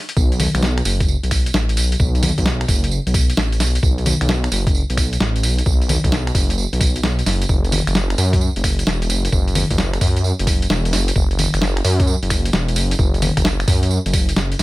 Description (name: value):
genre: UK garage, two-step garage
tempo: 131 BPM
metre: 4/4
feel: swing 66% on 16ths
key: unclear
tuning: A4 = 440 Hz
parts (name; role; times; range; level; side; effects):
- boom bap sampler-style drum kit; drums; 0.1-14.6 s; congas, finger snaps, hi-hat, snare drum, tambourine; -21 LUFS; equal; none
- dark detuned saw bass; bass; 0.2-14.6 s; E1 to F#2; -19 LUFS; equal; none
- electronic kick drum; drums; 0.2-14.3 s; none; -18 LUFS; equal; none
room: little or no reverb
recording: none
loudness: -15 LUFS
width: side -18 dB against mid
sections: 0.0-14.6 A section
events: break 0.0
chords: none